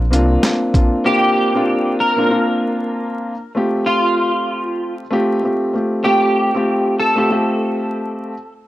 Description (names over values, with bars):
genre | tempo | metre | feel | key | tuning
hip hop, boom-bap hip-hop | 96 BPM | 4/4 | swing 59% on 16ths | G minor | A4 = 439 Hz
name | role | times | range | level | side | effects
dark concert grand piano | accompaniment | 0.1-8.3 s | A3 to G4 | -18 LUFS | equal | cassette tape, high-pass filter, low-pass filter
boom bap sampler-style drum kit | drums | 0.1-0.9 s | handclaps, hi-hat, kick drum, snare drum | -15 LUFS | equal | none
electric guitar at the edge of break-up | melody | 1.1-8.5 s | F4 to Bb4 | -18 LUFS | equal | ensemble chorus, high-pass filter, low-pass filter, analog delay
room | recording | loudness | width
little or no reverb | dry, gritty hardware recording, transformer saturation, vinyl crackle | -15 LUFS | side -15 dB against mid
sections
0.0-3.6 A section; 3.6-8.7 B section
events
none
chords
0.0 C9sus4; 3.6 G9sus4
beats
0.43 | 1.05 1.68 2.30 2.93 | 3.55 4.18 4.80 5.43 | 6.05 6.68 7.30 7.93